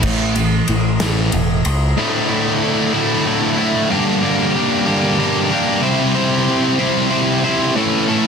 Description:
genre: quiet-loud alternative rock.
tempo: 62 BPM (dotted quarters).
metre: 6/8.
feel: straight.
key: unclear.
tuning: A4 = 440 Hz.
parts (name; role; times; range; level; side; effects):
distorted electric guitar; riff; 0.0-8.3 s; D2 to C5; -15 LUFS; equal; overdrive.
growling picked electric bass; bass; 0.0-1.9 s; E1 to C#2; -18 LUFS; equal; overdrive.
loose indie drum kit; drums; 0.0-1.8 s; crash cymbal, kick drum, ride cymbal, snare drum; -24 LUFS; left 1 dB; none.
room: little or no reverb.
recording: dense, heavily limited modern master.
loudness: -14 LUFS.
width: side -6 dB against mid.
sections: 0.0-2.0 A section; 2.0-8.3 B section.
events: none.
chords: 0.0 A; 2.0 Dsus2; 3.9 Gm; 5.8 C; 7.8 A.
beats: | 0.04 1.01 | 1.97 2.94 | 3.90 4.87 | 5.83 6.80 | 7.76.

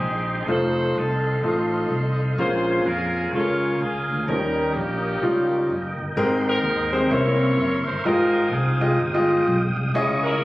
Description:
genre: uptempo gospel.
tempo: 127 BPM.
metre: 4/4.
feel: swing 60% on 8ths.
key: unclear.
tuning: A4 = 441 Hz.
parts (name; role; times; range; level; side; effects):
clear horn section; melody; 0.0-10.4 s; Bb3 to Db5; -26 LUFS; equal; none.
tonewheel organ; sustained chords; 0.0-10.4 s; Ab3 to Eb6; -29 LUFS; right 1 dB; slow rotary speaker, overdrive, chorus vibrato.
fingered electric bass; bass; 0.0-10.4 s; F1 to F2; -26 LUFS; equal; none.
clear concert grand piano; accompaniment; 0.5-10.4 s; Ab2 to Eb5; -22 LUFS; equal; none.
room: light reverb.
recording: recorded on a phone in the room, club reverb.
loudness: -19 LUFS.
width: side -18 dB against mid.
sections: 0.0-6.2 A section; 6.2-10.4 B section.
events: none.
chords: 0.5 F7; 2.4 Bbm7; 4.3 Eb7; 6.2 Abmaj9; 7.1 C7b9; 8.1 Fm9/Ab.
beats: 0.01 | 0.48 0.96 1.43 1.91 | 2.38 2.85 3.33 3.80 | 4.28 4.75 5.22 5.70 | 6.17 6.64 7.12 7.59 | 8.06 8.53 9.00 9.47 | 9.94 10.41.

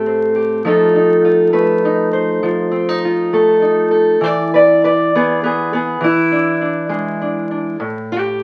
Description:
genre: acoustic country blues, solo or duo.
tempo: 67 BPM (dotted quarters).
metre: 12/8.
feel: straight.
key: unclear.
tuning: A4 = 440 Hz.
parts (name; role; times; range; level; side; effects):
fingerpicked steel-string acoustic guitar; solo; 0.0-8.4 s; A2 to D5; -15 LUFS; equal; none.
room: wet studio reverb, RT60 0.6 s.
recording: very old 78 rpm record, vinyl crackle.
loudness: -15 LUFS.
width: mono.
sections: 0.0-8.4 A section.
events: none.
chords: 0.0 Am7; 0.6 F7; 4.2 E7; 7.8 A7(no3).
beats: | 0.64 1.53 2.42 3.32 | 4.21 5.11 6.00 6.90 | 7.79.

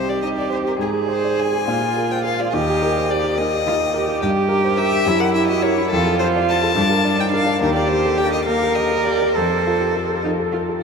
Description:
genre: quick classical-period movement for piano trio.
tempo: 70 BPM (dotted quarters).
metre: 6/8.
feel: straight.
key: Eb major.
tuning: A4 = 440 Hz.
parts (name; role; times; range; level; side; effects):
warm violin; melody; 0.0-10.2 s; G4 to A5; -23 LUFS; left 5 dB; none.
dark cello; second line; 0.0-10.6 s; D4 to Bb4; -20 LUFS; right 4 dB; none.
warm concert grand piano; accompaniment; 0.0-10.8 s; C2 to D5; -21 LUFS; left 2 dB; none.
room: wet huge ambient reverb, RT60 9.0 s.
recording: in a vast, echoing space.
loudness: -16 LUFS.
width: side -5 dB against mid.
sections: 0.0-10.8 A section.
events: none.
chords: 0.0 Cm; 0.8 Ab; 1.7 Bb5; 2.5 Eb; 4.2 Gm6; 5.1 Gb7; 5.9 F; 6.8 Gm; 7.6 Eb; 9.3 F.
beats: | 0.80 1.67 | 2.53 3.38 | 4.22 5.06 | 5.91 6.77 | 7.62 8.48 | 9.35 10.23.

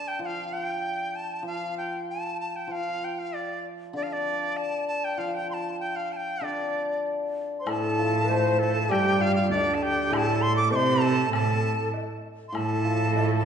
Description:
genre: chinese traditional, Chinese chamber ensemble.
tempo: 97 BPM.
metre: 2/4.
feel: straight.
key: unclear.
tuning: A4 = 436 Hz.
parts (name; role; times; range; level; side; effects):
bright dizi; melody; 0.0-13.4 s; D5 to D6; -29 LUFS; right 1 dB; none.
hammered dulcimer; accompaniment; 0.0-13.4 s; A2 to A3; -31 LUFS; left 2 dB; none.
bright reedy xiao; second line; 7.6-13.4 s; D4 to C5; -28 LUFS; left 2 dB; none.
rich cello; second line; 7.7-13.4 s; D2 to C3; -26 LUFS; right 4 dB; none.
woodblock; percussion; 7.7-13.3 s; none; -37 LUFS; left 2 dB; none.
room: wet recital hall reverb, RT60 1.8 s.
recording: recorded in a church or concert hall, nothing above 10.3 kHz.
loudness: -24 LUFS.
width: side -7 dB against mid.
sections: 0.0-7.7 A section; 7.7-13.4 B section.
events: none.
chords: none.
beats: | 0.21 0.83 | 1.45 2.07 | 2.71 3.34 | 3.96 4.58 | 5.20 5.82 | 6.44 7.06 | 7.68 8.30 | 8.91 9.52 | 10.13 10.73 | 11.32 11.93 | 12.54 13.15.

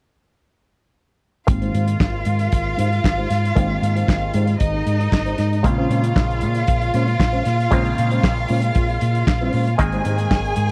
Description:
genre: disco.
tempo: 116 BPM.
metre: 4/4.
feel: straight.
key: Ab major.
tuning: A4 = 439 Hz.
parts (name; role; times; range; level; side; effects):
warm chamber string section; second line; 1.5-10.7 s; Eb4 to Ab5; -26 LUFS; equal; none.
mellow electric guitar; accompaniment; 1.5-10.5 s; Ab3 to C5; -30 LUFS; equal; spring reverb, low-pass filter.
overdriven clav; accompaniment; 1.5-10.7 s; C3 to Ab4; -30 LUFS; equal; auto-wah, low-pass filter.
hollow-body short-scale fingered electric bass; bass; 1.5-10.7 s; Ab1 to Bb2; -23 LUFS; equal; none.
warm soul drum kit; drums; 1.5-10.7 s; handclaps, hi-hat, kick drum, snare drum; -22 LUFS; equal; none.
room: little or no reverb.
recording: dry, close 1970s-style studio recording.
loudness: -19 LUFS.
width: mono.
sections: 1.5-10.7 A section.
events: filter sweep 1.5-10.7.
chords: 1.5 Abmaj7; 5.6 Bbm9; 9.8 Abmaj7.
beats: | 1.49 2.00 2.52 3.04 | 3.56 4.08 4.60 5.12 | 5.64 6.16 6.68 7.20 | 7.72 8.24 8.76 9.28 | 9.79 10.31.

